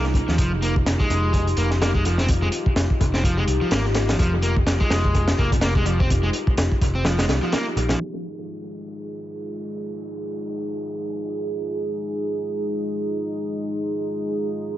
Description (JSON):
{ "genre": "breakbeat, breaks", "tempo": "126 BPM", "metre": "4/4", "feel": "swing 57% on 16ths", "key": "unclear", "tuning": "A4 = 440 Hz", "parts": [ { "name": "dark analog pad", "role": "sustained chords", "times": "0.0-14.8 s", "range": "Ab3 to Ab4", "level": "-27 LUFS", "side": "equal", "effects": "lush chorus, sidechain pumping" }, { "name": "overdriven semi-hollow guitar", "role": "riff", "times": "0.0-8.0 s", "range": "F3 to C4", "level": "-26 LUFS", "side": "equal", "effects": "dub echo" }, { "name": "overdriven picked electric bass", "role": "bass", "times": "0.0-7.9 s", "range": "F1 to Eb2", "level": "-23 LUFS", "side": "equal", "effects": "none" }, { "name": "crunchy breakbeat drum kit", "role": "drums", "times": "0.0-8.0 s", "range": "hi-hat, kick drum, snare drum", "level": "-22 LUFS", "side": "equal", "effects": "dub echo" }, { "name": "downlifter", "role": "sound effects", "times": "8.3-11.8 s", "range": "none", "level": "-50 LUFS", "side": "right 1 dB", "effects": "none" } ], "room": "light reverb, small room ambience", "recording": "echo-heavy mix, low-pass filter, nothing above 7.8 kHz", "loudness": "-20 LUFS", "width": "side -14 dB against mid", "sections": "0.0-8.0 A section; 8.0-14.8 B section", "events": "kick drops out 7.1-8.0; filter sweep 8.0-14.8", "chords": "0.0 Fm9; 8.0 Fm7" }